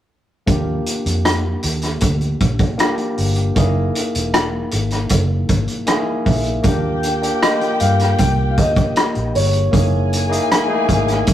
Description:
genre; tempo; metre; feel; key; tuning
lush 1970s-style soul; 78 BPM; 4/4; straight; Eb major; A4 = 439 Hz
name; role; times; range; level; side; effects
barky tine electric piano; accompaniment; 0.5-11.3 s; D3 to Ab5; -22 LUFS; left 1 dB; overdrive
vintage muted fingered electric bass; bass; 0.5-11.3 s; Fb1 to G2; -20 LUFS; equal; none
vintage drum kit; drums; 0.5-11.3 s; hi-hat, kick drum, rim click; -18 LUFS; equal; none
dark studio string section; second line; 6.7-11.3 s; G4 to Ab5; -25 LUFS; left 2 dB; none
warm concert grand piano; melody; 7.4-11.3 s; Db5 to G5; -22 LUFS; left 1 dB; none
room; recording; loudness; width
moderate small room reverb, RT60 0.6 s; rough rehearsal-room recording, warm saturation; -15 LUFS; side -11 dB against mid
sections
0.5-6.6 A section; 6.6-11.3 B section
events
tine electric piano fill 5.5-6.6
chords
0.5 Ebmaj7; 3.6 Gb13; 6.6 Ebmaj7; 9.7 Gb13

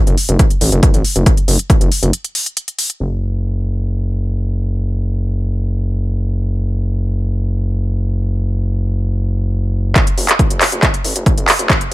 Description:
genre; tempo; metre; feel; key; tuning
driving peak-time techno; 138 BPM; 4/4; straight; F# minor; A4 = 438 Hz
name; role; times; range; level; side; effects
gritty driven synth bass; bass; 0.1-11.9 s; F#1 to A1; -16 LUFS; equal; sidechain pumping, high-pass filter
techno drum kit; drums; 0.1-3.0, 10.0-11.9 s; handclaps, hi-hat; -15 LUFS; equal; overdrive, sidechain pumping on hats, high-pass filter on hats, high-pass filter on snare
electronic kick drum; drums; 0.4-1.8, 10.0-11.8 s; none; -13 LUFS; equal; none
room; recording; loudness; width
little or no reverb; none; -14 LUFS; side -17 dB against mid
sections
0.0-3.0 A section; 3.0-10.0 B section; 10.0-11.9 C section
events
break 2.1-3.0; build-up 10.0-11.9; drum fill 10.0-11.9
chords
none

